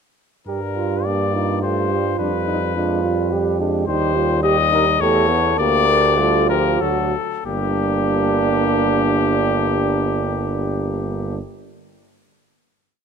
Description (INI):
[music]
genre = classical, brass quintet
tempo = 92-108 BPM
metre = 3/4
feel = rubato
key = G minor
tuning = A4 = 440 Hz
[part]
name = clear trumpet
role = melody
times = 0.5-11.4 s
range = G4 to Eb5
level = -21 LUFS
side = left 9 dB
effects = none
[part]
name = mellow flugelhorn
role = second line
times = 0.5-11.4 s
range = D4 to Bb4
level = -23 LUFS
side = right 10 dB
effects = none
[part]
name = warm trombone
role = accompaniment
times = 0.5-11.4 s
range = F3 to B3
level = -26 LUFS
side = right 5 dB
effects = none
[part]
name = bright bass trombone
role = bass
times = 0.5-11.4 s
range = G1 to G2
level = -23 LUFS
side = right 1 dB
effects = none
[part]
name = clear French horn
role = accompaniment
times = 1.1-11.4 s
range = Bb3 to Bb4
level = -24 LUFS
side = left 4 dB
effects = none
[sound]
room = light reverb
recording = close, detailed microphones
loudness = -16 LUFS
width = side -6 dB against mid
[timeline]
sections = 0.5-7.5 A section; 7.5-11.2 final chord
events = slowing down 3.0-7.5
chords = 0.5 Gm; 2.2 G7/F; 3.9 Cm/Eb; 5.0 A7/E; 5.6 Gm/D; 6.8 D; 7.5 Gm